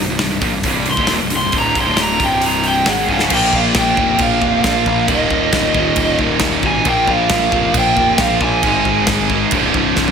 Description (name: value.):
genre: heavy metal.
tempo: 135 BPM.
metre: 4/4.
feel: straight.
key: unclear.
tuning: A4 = 440 Hz.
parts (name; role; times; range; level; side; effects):
distorted electric guitar; riff; 0.0-10.1 s; C2 to Bb3; -22 LUFS; left 12 dB; distortion.
scooped high-gain guitar; riff; 0.0-10.1 s; C2 to Bb3; -20 LUFS; right 10 dB; distortion, slapback echo.
fuzz picked electric bass; bass; 0.0-10.1 s; C1 to Bb1; -22 LUFS; equal; overdrive.
modern studio drum kit; drums; 0.2-10.1 s; crash cymbal, hi-hat, kick drum, snare drum, toms; -19 LUFS; equal; none.
lead guitar through a small cranked amp; melody; 0.9-9.0 s; Eb5 to C6; -18 LUFS; right 1 dB; overdrive, slapback echo, ping-pong delay.
distorted electric guitar; riff; 3.3-10.1 s; C2 to Bb3; -21 LUFS; right 1 dB; distortion.
room: moderate lush hall reverb, RT60 2.0 s.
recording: big arena sound.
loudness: -12 LUFS.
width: side -6 dB against mid.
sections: 0.0-3.3 A section; 3.3-10.1 B section.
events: lead electric guitar solo 0.0-3.3; drum fill 3.1.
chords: 0.0 Cm; 3.3 Bb5; 5.1 Eb5; 6.9 Bb5; 8.6 Ab5; 9.5 C5.